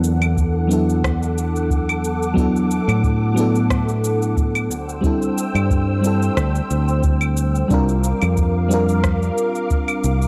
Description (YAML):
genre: sunset chillout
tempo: 90 BPM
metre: 4/4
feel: swing 54% on 16ths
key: unclear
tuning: A4 = 440 Hz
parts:
  - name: mellow FM electric piano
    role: accompaniment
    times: 0.0-10.3 s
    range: F#3 to Bb4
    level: -24 LUFS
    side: equal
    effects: chorus, phaser, analog delay
  - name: soft string machine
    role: sustained chords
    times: 0.0-10.3 s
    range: A4 to E6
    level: -30 LUFS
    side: equal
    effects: ensemble chorus
  - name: fingered electric bass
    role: bass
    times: 0.0-10.3 s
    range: C2 to A2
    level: -22 LUFS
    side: equal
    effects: none
  - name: electronic cabasa, claves and rim click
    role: drums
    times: 0.0-10.3 s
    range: none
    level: -29 LUFS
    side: equal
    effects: overdrive
  - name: electronic kick drum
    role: drums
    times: 0.4-9.8 s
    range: none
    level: -23 LUFS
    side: equal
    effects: none
room: light reverb, digital ambience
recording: dry, gritty hardware recording, cassette tape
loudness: -19 LUFS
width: mono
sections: 0.0-10.3 A section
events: none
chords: 0.0 E9sus4; 4.7 D9sus4; 7.7 C9sus4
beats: 0.37 1.04 1.71 | 2.37 3.04 3.71 4.37 | 5.04 5.71 6.37 7.04 | 7.71 8.37 9.04 9.71